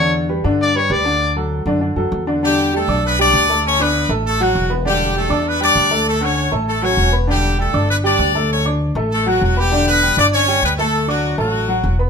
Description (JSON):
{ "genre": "latin", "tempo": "198 BPM", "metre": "4/4", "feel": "straight", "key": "unclear", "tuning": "A4 = 440 Hz", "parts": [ { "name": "brilliant trumpet", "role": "melody", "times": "0.0-1.4 s", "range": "C#5 to D5", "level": "-17 LUFS", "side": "left 2 dB", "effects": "none" }, { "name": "warm upright piano", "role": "accompaniment", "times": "0.0-12.1 s", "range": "D3 to D6", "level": "-19 LUFS", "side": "equal", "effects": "none" }, { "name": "upright bass", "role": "bass", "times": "0.0-12.1 s", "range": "E1 to G2", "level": "-20 LUFS", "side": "equal", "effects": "none" }, { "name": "brilliant horn section", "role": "melody", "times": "2.4-12.0 s", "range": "F#3 to D5", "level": "-16 LUFS", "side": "left 1 dB", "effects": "none" } ], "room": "moderate studio reverb, RT60 0.8 s", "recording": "minimal, uncompressed stereo recording", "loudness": "-14 LUFS", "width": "side -6 dB against mid", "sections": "0.0-2.4 A section; 2.4-12.1 B section", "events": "trumpet solo 0.0-2.4", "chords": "0.0 Em7; 1.2 D; 2.4 Em7; 3.6 Dmaj7; 4.9 Em7; 6.1 Dmaj7; 7.3 Em7; 8.5 Dmaj7; 9.7 Em7; 10.9 D", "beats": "0.29 0.60 0.90 | 1.21 1.51 1.82 2.12 | 2.42 2.73 3.03 3.34 | 3.64 3.94 4.25 4.55 | 4.85 5.16 5.46 5.77 | 6.07 6.37 6.68 6.98 | 7.29 7.59 7.89 8.20 | 8.50 8.81 9.11 9.41 | 9.72 10.02 10.32 10.63 | 10.93 11.23 11.54 11.84" }